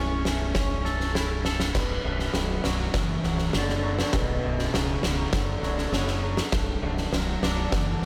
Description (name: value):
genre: post-rock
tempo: 100 BPM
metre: 4/4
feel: straight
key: B minor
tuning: A4 = 440 Hz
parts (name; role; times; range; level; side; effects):
- dark cello; melody; 0.0-8.1 s; B2 to C#4; -34 LUFS; equal; analog delay
- electric guitar through a small old amp; arpeggios; 0.0-8.1 s; A4 to E5; -42 LUFS; equal; none
- twangy electric guitar; arpeggios; 0.0-8.1 s; B1 to A4; -37 LUFS; equal; analog chorus, slapback echo, analog delay
- growling fingered electric bass; bass; 0.0-8.1 s; B0 to F#1; -31 LUFS; equal; overdrive
- oversized low-tuned drum kit; drums; 0.3-8.1 s; crash cymbal, kick drum, snare drum; -30 LUFS; equal; none
room: moderate concert hall reverb, RT60 1.8 s, small room ambience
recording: big arena sound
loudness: -26 LUFS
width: mono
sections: 0.0-1.7 A section; 1.7-8.1 B section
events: drum fill 1.4-1.7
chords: 0.0 A/B; 1.7 Bmadd9; 6.5 Gsus2/B